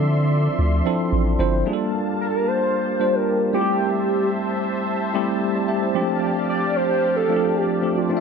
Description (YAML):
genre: amapiano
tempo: 112 BPM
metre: 4/4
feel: straight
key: F major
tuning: A4 = 442 Hz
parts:
  - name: warm velvety synth lead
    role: melody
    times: 0.0-8.2 s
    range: F4 to D5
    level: -22 LUFS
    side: right 1 dB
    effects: chorus, ping-pong delay
  - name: tine electric piano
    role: accompaniment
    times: 0.0-8.2 s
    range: F3 to E5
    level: -22 LUFS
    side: equal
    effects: medium stereo tremolo
  - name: warm analog pad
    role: sustained chords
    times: 0.0-8.2 s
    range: F3 to C6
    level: -27 LUFS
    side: left 1 dB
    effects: wide subtle chorus
  - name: punchy sub bass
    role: bass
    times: 0.0-1.6 s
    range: G1 to D3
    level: -19 LUFS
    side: equal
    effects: none
room: light reverb, digital ambience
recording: dark, warm production, faint mains hum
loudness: -19 LUFS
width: side -6 dB against mid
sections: 0.0-8.2 A section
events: none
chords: 0.0 Dm9; 1.7 Gm9; 3.5 Am7; 5.9 F69